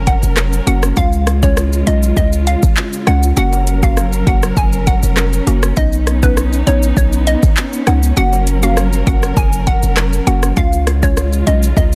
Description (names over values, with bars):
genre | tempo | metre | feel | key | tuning
dancehall | 100 BPM | 4/4 | straight | F# major | A4 = 440 Hz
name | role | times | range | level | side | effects
warm studio string section | sustained chords | 0.0-11.9 s | C#3 to A#4 | -24 LUFS | equal | sidechain pumping
warm 808-style bass | bass | 0.0-11.9 s | E#1 to C#2 | -17 LUFS | equal | none
hollow square pluck | melody | 0.1-11.9 s | B4 to G#5 | -23 LUFS | equal | chorus, tape echo
afro-pop drum kit | drums | 0.1-11.9 s | handclaps, hi-hat, kick drum, rim click, shaker | -18 LUFS | equal | overdrive
maracas and timbales | percussion | 0.1-11.9 s | none | -37 LUFS | equal | none
mallet-like synth pluck | accompaniment | 0.7-11.6 s | G#3 to F#4 | -24 LUFS | equal | chorus
room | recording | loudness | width
little or no reverb | dense, heavily limited modern master | -14 LUFS | mono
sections
0.0-11.9 A section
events
none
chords
0.0 F#; 1.0 C#; 3.4 F#; 5.8 Badd9; 8.2 F#; 10.6 C#